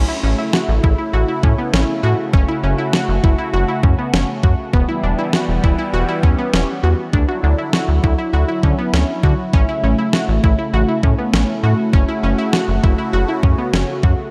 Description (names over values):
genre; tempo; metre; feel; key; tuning
synth-pop; 100 BPM; 4/4; straight; A mixolydian; A4 = 438 Hz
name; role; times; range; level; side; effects
phased analog pad; sustained chords; 0.0-14.3 s; C#3 to F#4; -24 LUFS; equal; phaser, chorus
analog pluck; arpeggios; 0.0-14.2 s; B3 to F#4; -24 LUFS; equal; chorus, delay
rubbery square bass; bass; 0.0-14.1 s; E1 to D3; -19 LUFS; equal; none
clean 12-bit digital drum machine; drums; 0.5-14.2 s; kick drum, snare drum; -19 LUFS; equal; none
room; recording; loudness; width
light reverb; none; -17 LUFS; mono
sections
0.0-14.3 A section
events
none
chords
0.0 A; 2.3 F#m; 4.7 Em; 7.1 Dadd9; 9.5 A; 11.9 F#m